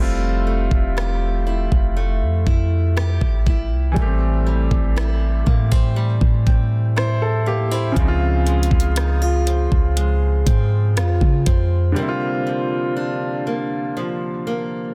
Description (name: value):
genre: contemporary R&B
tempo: 60 BPM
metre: 4/4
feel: straight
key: F major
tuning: A4 = 440 Hz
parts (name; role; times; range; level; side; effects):
- clear grand piano; accompaniment; 0.0-14.9 s; Db3 to C5; -28 LUFS; equal; none
- picked old ladder-braced acoustic guitar; arpeggios; 0.0-14.9 s; A2 to G4; -29 LUFS; equal; none
- clean 808-style bass; bass; 0.0-11.9 s; E1 to Db3; -21 LUFS; equal; none
- smooth R&B drum kit; drums; 0.7-11.7 s; hi-hat, kick drum, rim click; -22 LUFS; equal; none
room: digital ambience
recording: dense, heavily limited modern master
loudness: -19 LUFS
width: mono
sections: 0.0-14.9 A section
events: break 12.0-14.9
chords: 0.0 Fmaj9; 4.0 Am7; 8.0 Dbmaj7; 12.0 C9sus4